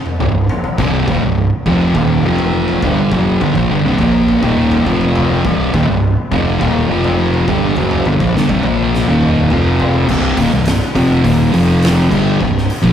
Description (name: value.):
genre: stoner and doom metal.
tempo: 103 BPM.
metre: 4/4.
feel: straight.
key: C minor.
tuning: A4 = 440 Hz.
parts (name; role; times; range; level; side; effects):
oversized low-tuned drum kit; drums; 0.1-12.9 s; crash cymbal, hi-hat, kick drum, snare drum, splash cymbal, toms; -20 LUFS; equal; none.
thick fuzz guitar; riff; 0.2-12.9 s; C2 to Bb3; -13 LUFS; equal; distortion.
fuzz fingered electric bass; bass; 0.2-12.9 s; C1 to Bb1; -20 LUFS; equal; overdrive, tube saturation.
room: moderate small room reverb, RT60 0.5 s.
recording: rough rehearsal-room recording, warm saturation.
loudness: -11 LUFS.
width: side -9 dB against mid.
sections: 0.0-10.1 A section; 10.1-12.9 B section.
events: drum fill 0.0-0.8, 8.9-10.1.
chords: 0.0 Cm; 2.2 F5; 2.8 Cm; 4.9 F5; 5.4 Cm; 6.9 F5; 7.5 Cm; 9.5 F5; 10.1 Cm; 11.5 F5; 12.1 C5.